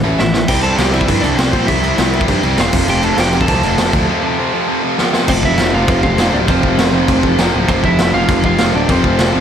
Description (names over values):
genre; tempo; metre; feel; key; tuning
punk rock; 200 BPM; 4/4; straight; unclear; A4 = 440 Hz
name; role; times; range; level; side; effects
lightly driven lead guitar; melody; 0.0-9.4 s; C4 to A5; -19 LUFS; right 2 dB; none
tight distorted guitar; riff; 0.0-9.4 s; F2 to C4; -16 LUFS; equal; distortion
fuzz picked electric bass; bass; 0.0-9.4 s; D1 to Bb2; -18 LUFS; equal; overdrive
raw garage drum kit; drums; 0.2-9.3 s; crash cymbal, kick drum, snare drum; -16 LUFS; equal; none
room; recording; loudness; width
light reverb; none; -11 LUFS; side -8 dB against mid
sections
0.5-5.3 A section; 5.3-9.4 B section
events
drum fill 0.0-0.5, 5.0; break 4.1-5.3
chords
0.5 C; 2.7 F; 5.3 F5